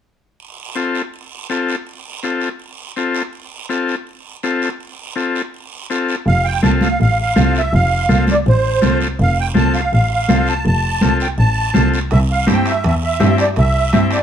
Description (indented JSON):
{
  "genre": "latin, cumbia",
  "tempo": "164 BPM",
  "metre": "4/4",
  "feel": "straight",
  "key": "F major",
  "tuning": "A4 = 441 Hz",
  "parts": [
    { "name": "guiro", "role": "percussion", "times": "0.4-14.2 s", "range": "none", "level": "-30 LUFS", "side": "right 7 dB", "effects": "none" },
    { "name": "combo organ", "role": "accompaniment", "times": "0.8-14.2 s", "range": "C4 to A4", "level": "-20 LUFS", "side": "left 4 dB", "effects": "none" },
    { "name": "musette accordion", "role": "melody", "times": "6.3-14.2 s", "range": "C5 to A5", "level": "-18 LUFS", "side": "right 2 dB", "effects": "none" },
    { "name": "rich double bass", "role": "bass", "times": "6.3-14.2 s", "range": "F1 to G2", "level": "-16 LUFS", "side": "equal", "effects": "none" },
    { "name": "congas", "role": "percussion", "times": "6.6-14.1 s", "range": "none", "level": "-18 LUFS", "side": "right 1 dB", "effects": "none" },
    { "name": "timbales", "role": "percussion", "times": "12.1-14.2 s", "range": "none", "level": "-25 LUFS", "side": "right 3 dB", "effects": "none" }
  ],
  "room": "light reverb",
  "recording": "none",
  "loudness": "-14 LUFS",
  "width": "side -9 dB against mid",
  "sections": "0.4-6.3 A section; 6.3-14.2 B section",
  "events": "none",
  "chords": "0.4 F; 12.1 C"
}